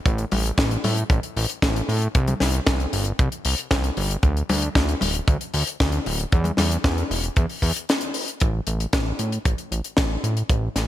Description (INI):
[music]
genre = italo disco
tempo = 115 BPM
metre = 4/4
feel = straight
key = unclear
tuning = A4 = 441 Hz
[part]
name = fat analog bass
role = bass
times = 0.1-10.9 s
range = D1 to A2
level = -24 LUFS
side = equal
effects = none
[part]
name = kick drum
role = drums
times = 0.1-10.6 s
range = none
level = -21 LUFS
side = equal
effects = none
[part]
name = tight funk drum kit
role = drums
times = 0.1-10.9 s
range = hi-hat, snare drum, toms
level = -24 LUFS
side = left 2 dB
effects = gated reverb
[sound]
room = little or no reverb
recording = none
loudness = -20 LUFS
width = side -13 dB against mid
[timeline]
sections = 0.0-8.4 A section; 8.4-10.9 B section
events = break 7.9-8.4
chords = none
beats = | 0.06 0.58 1.10 1.62 | 2.15 2.67 3.19 3.71 | 4.23 4.76 5.28 5.80 | 6.32 6.84 7.37 7.89 | 8.41 8.93 9.45 9.97 | 10.49